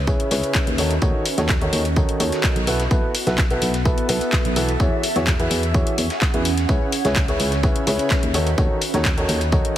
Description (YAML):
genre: piano house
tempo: 127 BPM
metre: 4/4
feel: straight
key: unclear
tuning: A4 = 440 Hz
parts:
  - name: solid FM bass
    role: bass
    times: 0.0-9.6 s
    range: B1 to E2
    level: -23 LUFS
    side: equal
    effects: sidechain pumping
  - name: ethereal airy pad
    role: texture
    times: 0.0-9.8 s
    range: B3 to F#5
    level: -28 LUFS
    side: right 2 dB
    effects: ensemble chorus, built-in reverb, phaser, sidechain pumping
  - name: warm upright piano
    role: riff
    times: 0.1-9.7 s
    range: C#3 to C#5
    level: -23 LUFS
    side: equal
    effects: sidechain pumping, low-pass filter, ping-pong delay
  - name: dusty soul sampler-style drum kit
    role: drums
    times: 0.1-9.6 s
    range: hi-hat, snare drum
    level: -33 LUFS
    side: right 1 dB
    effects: sidechain pumping on hats, high-pass filter on hats, high-pass filter on snare, high-pass filter on room
  - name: electronic kick drum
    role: drums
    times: 0.1-9.6 s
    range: none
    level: -20 LUFS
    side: equal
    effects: none
  - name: house drum kit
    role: drums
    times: 0.2-9.7 s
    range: handclaps, hi-hat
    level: -26 LUFS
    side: left 2 dB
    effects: none
room: light reverb, digital ambience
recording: heavily compressed radio sound, multiband compression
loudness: -17 LUFS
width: side -12 dB against mid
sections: 0.0-9.8 A section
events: none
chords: 0.0 C#m7; 0.8 D#m7b5; 2.7 B7sus4; 4.8 E69; 6.7 C#m7; 8.3 D#m7b5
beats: 0.08 0.55 | 1.02 1.49 1.97 2.44 | 2.91 3.38 3.85 4.33 | 4.80 5.27 5.75 6.22 | 6.69 7.16 7.63 8.11 | 8.58 9.05 9.52